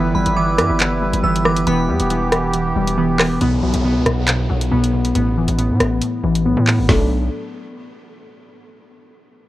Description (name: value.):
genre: hip hop, drill.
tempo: 138 BPM.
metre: 4/4.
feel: half-time.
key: B minor.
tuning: A4 = 440 Hz.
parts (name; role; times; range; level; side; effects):
warbly dusty pluck; accompaniment; 0.0-7.1 s; A2 to D4; -21 LUFS; right 2 dB; chorus, low-pass filter.
accordion; sustained chords; 0.0-3.4 s; E3 to B4; -23 LUFS; right 2 dB; light tremolo tuning.
glassy digital keys; arpeggios; 0.0-7.1 s; B3 to A4; -22 LUFS; left 3 dB; chorus, low-pass filter, tape echo.
distorted 808-style bass; bass; 0.0-7.3 s; E1 to A2; -21 LUFS; equal; distortion.
glassy synth bell; second line; 0.1-2.9 s; B5 to E6; -24 LUFS; right 1 dB; chorus, tape echo.
drill drum kit; drums; 0.3-7.0 s; handclaps, hi-hat, kick drum, rim click, snare drum; -19 LUFS; equal; overdrive.
downlifter; sound effects; 3.4-6.9 s; none; -30 LUFS; equal; none.
room: little or no reverb.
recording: worn, warbling old tape, cassette tape, warbly pitch drift.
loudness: -15 LUFS.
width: side -15 dB against mid.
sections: 0.0-3.4 A section; 3.4-6.9 B section; 6.9-8.6 C section.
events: filter sweep 3.4-6.9.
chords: 0.0 G6; 1.7 Em; 3.4 B5; 5.2 Asus2; 6.9 Bm7.